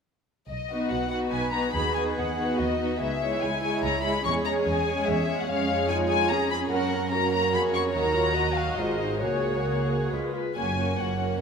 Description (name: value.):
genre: quick classical-period movement for string orchestra.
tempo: 144 BPM.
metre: 3/4.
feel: rubato.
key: B major, F# major from 5.5 s.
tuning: A4 = 440 Hz.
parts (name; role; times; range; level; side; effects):
warm chamber violin section; melody; 0.5-11.4 s; C#5 to C#6; -29 LUFS; left 5 dB; none.
warm chamber double bass section; bass; 0.5-11.4 s; F#1 to F#2; -32 LUFS; right 3 dB; none.
warm chamber violin section; second line; 0.7-11.4 s; F#4 to D#5; -32 LUFS; left 4 dB; none.
warm chamber viola section; accompaniment; 0.7-11.4 s; F#3 to F#4; -29 LUFS; right 2 dB; none.
dark chamber cello section; bass; 0.9-11.4 s; F#2 to B4; -32 LUFS; right 4 dB; none.
room: wet scoring stage reverb, RT60 2.0 s.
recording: none.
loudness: -23 LUFS.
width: side -6 dB against mid.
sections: 0.5-10.6 A section.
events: none.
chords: 0.5 B; 1.7 B/D#; 3.0 C#m; 4.2 C#m/E; 5.5 C#/E#; 6.7 F#; 7.9 D#m; 8.8 G#7; 9.2 C#sus4; 10.1 C# (rootless); 10.6 F#.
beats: | 0.48 0.91 1.32 | 1.74 2.16 2.58 | 3.00 3.41 3.83 | 4.24 4.66 5.07 | 5.48 5.89 6.30 | 6.71 7.12 7.54 | 7.95 8.36 8.79 | 9.23 9.68 10.13 | 10.56 10.99.